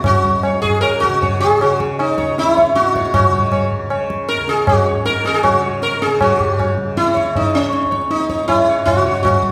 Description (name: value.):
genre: indian classical, Hindustani.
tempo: 157 BPM.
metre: 4/4.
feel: straight.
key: C# raga bhimpalasi.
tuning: A4 = 440 Hz.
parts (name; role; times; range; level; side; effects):
sitar; melody; 0.0-9.5 s; C#4 to C#5; -18 LUFS; equal; none.
tanpura; drone; 0.0-9.5 s; C#2 to C#3; -28 LUFS; equal; none.
tabla; percussion; 0.0-9.5 s; none; -21 LUFS; equal; none.
room: wet recital hall reverb, RT60 1.4 s.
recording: recorded in a church or concert hall.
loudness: -16 LUFS.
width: mono.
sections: 0.0-6.2 A section; 6.2-9.5 A section.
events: none.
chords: none.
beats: | 0.05 0.44 0.82 1.21 | 1.59 1.98 2.36 2.75 | 3.13 3.52 3.90 4.29 | 4.67 5.05 5.43 5.82 | 6.20 6.58 6.96 7.34 | 7.72 8.11 8.49 8.87 | 9.25.